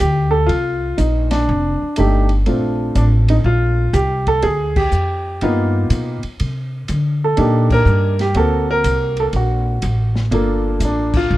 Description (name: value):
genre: jazz piano trio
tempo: 122 BPM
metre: 4/4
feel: swing 67% on 8ths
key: G minor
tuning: A4 = 440 Hz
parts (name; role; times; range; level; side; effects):
- warm baby grand piano; melody; 0.0-11.4 s; A3 to Bb4; -18 LUFS; right 1 dB; none
- upright bass; bass; 0.0-11.4 s; F1 to D3; -17 LUFS; equal; none
- open jazz drum kit; drums; 0.0-11.2 s; crash cymbal, hi-hat, kick drum, ride cymbal, snare drum; -26 LUFS; left 1 dB; none
room: little or no reverb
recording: dark, warm production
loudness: -14 LUFS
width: side -16 dB against mid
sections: 0.0-11.4 A section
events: band accent 1.2, 4.7, 7.6, 11.1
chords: 0.5 Bbsus2; 1.5 F13; 2.5 Bbmaj9; 4.4 Dmadd11; 5.4 G7alt; 6.4 Cm9; 8.4 D7b13; 10.3 Gm9